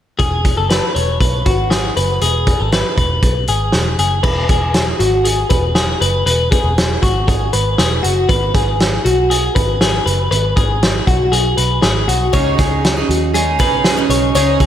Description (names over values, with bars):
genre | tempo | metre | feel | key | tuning
jangly indie pop | 119 BPM | 4/4 | straight | E major | A4 = 440 Hz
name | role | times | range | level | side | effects
twelve-string electric guitar | arpeggios | 0.2-14.7 s | F#4 to C#5 | -17 LUFS | left 2 dB | ping-pong delay, slapback echo
vintage muted picked electric bass | bass | 0.2-14.7 s | E1 to D#2 | -18 LUFS | equal | none
loose indie drum kit | drums | 0.2-14.7 s | crash cymbal, hi-hat, kick drum, snare drum | -17 LUFS | equal | none
picked twelve-string acoustic guitar | accompaniment | 12.3-14.7 s | C#3 to G#4 | -17 LUFS | right 7 dB | slapback echo
room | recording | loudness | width
moderate lush hall reverb, RT60 2.1 s | big arena sound | -12 LUFS | side -10 dB against mid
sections
0.2-4.2 A section; 4.2-14.7 B section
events
none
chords
0.2 E; 8.3 G#m; 12.3 C#sus2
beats
| 0.19 0.70 1.21 1.71 | 2.22 2.73 3.23 3.74 | 4.25 4.75 5.26 5.76 | 6.27 6.77 7.28 7.79 | 8.29 8.80 9.30 9.81 | 10.31 10.82 11.32 11.83 | 12.33 12.84 13.34 13.84 | 14.35